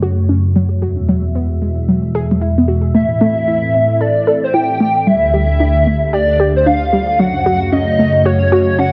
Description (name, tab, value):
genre	IDM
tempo	113 BPM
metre	4/4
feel	swing 62% on 16ths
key	unclear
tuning	A4 = 440 Hz
part	phased analog pad	sustained chords	0.0-8.9 s	D2 to E5	-18 LUFS	equal	phaser, chorus
part	warbly dusty pluck	arpeggios	0.0-8.9 s	F#3 to A4	-19 LUFS	equal	chorus, digital delay
part	warbly nostalgic lead	melody	2.9-8.9 s	C5 to G5	-17 LUFS	equal	ensemble chorus, tape echo
room	wet echo chamber reverb, RT60 1.9 s, digital ambience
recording	none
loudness	-14 LUFS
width	mono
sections	0.0-8.9 A section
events	filter sweep on analog synth pad 0.0-8.9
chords	0.0 F#m; 0.8 Eadd9; 2.9 Am; 5.1 Dsus4; 7.2 F#m